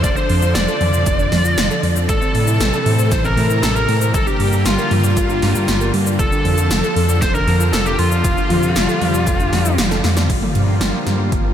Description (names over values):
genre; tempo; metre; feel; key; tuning
synthwave; 117 BPM; 4/4; straight; G dorian; A4 = 437 Hz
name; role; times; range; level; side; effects
bluesy overdriven lead guitar; melody; 0.0-9.8 s; F4 to D5; -21 LUFS; left 1 dB; distortion, ping-pong delay
string machine, violins; second line; 0.0-9.7 s; F4 to D5; -28 LUFS; left 1 dB; ensemble chorus, analog delay
lush unison pad; sustained chords; 0.0-11.5 s; C3 to F4; -23 LUFS; equal; chorus, sidechain pumping
thumb-piano-like synth pluck; arpeggios; 0.0-11.5 s; E3 to D5; -26 LUFS; right 4 dB; chorus, analog delay
dark detuned saw bass; bass; 0.0-11.5 s; F1 to A2; -18 LUFS; equal; tube saturation, sidechain pumping
80s electronic pad drums; drums; 0.0-11.4 s; crash cymbal, hi-hat, shaker, snare drum, toms; -22 LUFS; equal; gated reverb on snare and toms, overdrive
electronic kick drum; drums; 0.0-11.4 s; none; -21 LUFS; equal; overdrive
room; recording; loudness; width
moderate huge ambient reverb, RT60 8.1 s; dreamy mix soaked in reverb; -14 LUFS; side -9 dB against mid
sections
0.0-10.3 A section; 10.3-11.5 B section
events
drum fill 9.9-10.3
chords
0.0 Dm/F; 2.1 Am; 4.1 Gm; 6.2 Dm/F; 10.3 Gm7